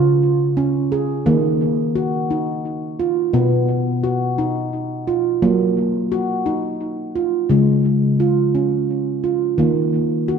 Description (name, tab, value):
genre	world meditative, meditative tuned percussion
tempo	86 BPM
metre	3/4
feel	swing 55% on 16ths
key	Eb minor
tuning	A4 = 440 Hz
part	handpan	solo	0.0-10.4 s	B2 to Ab4	-16 LUFS	right 1 dB	tape echo
room	wet concert hall reverb, RT60 1.9 s, studio reverb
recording	dark, warm production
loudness	-16 LUFS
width	side -6 dB against mid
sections	0.0-1.3 A section; 1.3-10.4 B section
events	none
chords	0.0 Db; 1.3 Ebm; 3.3 B; 5.4 Gb; 7.5 Db; 9.6 Ebm